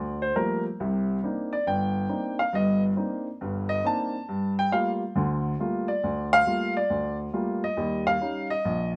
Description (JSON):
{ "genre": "solo jazz", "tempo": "138 BPM", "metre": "4/4", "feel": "swing 65% on 8ths", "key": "G minor", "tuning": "A4 = 440 Hz", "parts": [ { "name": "warm baby grand piano", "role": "solo", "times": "0.0-9.0 s", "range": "G1 to A5", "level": "-27 LUFS", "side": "equal", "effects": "none" } ], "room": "moderate studio reverb, RT60 0.9 s", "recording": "none", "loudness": "-27 LUFS", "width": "mono", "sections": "0.0-9.0 A section", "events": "grand piano solo 0.0-9.0", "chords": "0.0 Gm9; 0.8 Cm9; 4.3 Gm9; 7.8 Eb7", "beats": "0.35 | 0.79 1.22 1.66 2.09 | 2.53 2.96 3.40 3.84 | 4.27 4.71 5.15 5.58 | 6.02 6.46 6.89 7.33 | 7.76 8.20 8.64" }